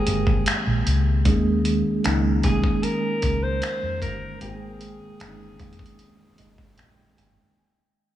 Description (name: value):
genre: contemporary R&B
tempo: 76 BPM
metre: 4/4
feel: straight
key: Ab major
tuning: A4 = 440 Hz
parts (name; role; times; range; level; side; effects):
- breathy alto saxophone; melody; 0.0-6.7 s; Ab4 to C5; -30 LUFS; equal; analog delay
- mellow tine electric piano; accompaniment; 0.0-7.6 s; Eb3 to Ab5; -26 LUFS; right 1 dB; medium stereo tremolo
- vintage muted fingered electric bass; bass; 0.1-7.4 s; F1 to F2; -23 LUFS; equal; none
- dusty soul sampler-style drum kit; drums; 0.1-7.4 s; finger snaps, hi-hat, kick drum; -25 LUFS; equal; vintage 12-bit sampler grit
room: moderate plate reverb, RT60 3.5 s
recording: dreamy mix soaked in reverb, studio ambience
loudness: -19 LUFS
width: side -12 dB against mid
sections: 0.0-7.6 A section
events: fade-out 0.0-7.6; tine electric piano fill 6.0-7.6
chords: 0.0 Abmaj9; 1.3 Eb7sus4; 4.4 Abmaj9